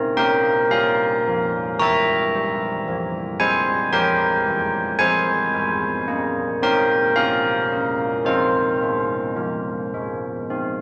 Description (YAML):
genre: classical, tune for church bells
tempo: 55 BPM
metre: 3/4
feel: straight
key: F minor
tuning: A4 = 440 Hz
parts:
  - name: carillon bells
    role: solo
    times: 0.0-10.8 s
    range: E3 to Bb5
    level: -21 LUFS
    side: equal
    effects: none
room: wet cathedral reverb, RT60 4.8 s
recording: none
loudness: -21 LUFS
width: mono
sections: 0.0-10.8 A section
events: none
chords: 0.0 Bbm; 1.8 C7/E; 5.0 Fm; 7.2 Bbm/Db; 8.3 Fm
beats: 0.71 | 1.82 2.89 3.95 | 5.02 6.09 7.18 | 8.29 9.40 10.52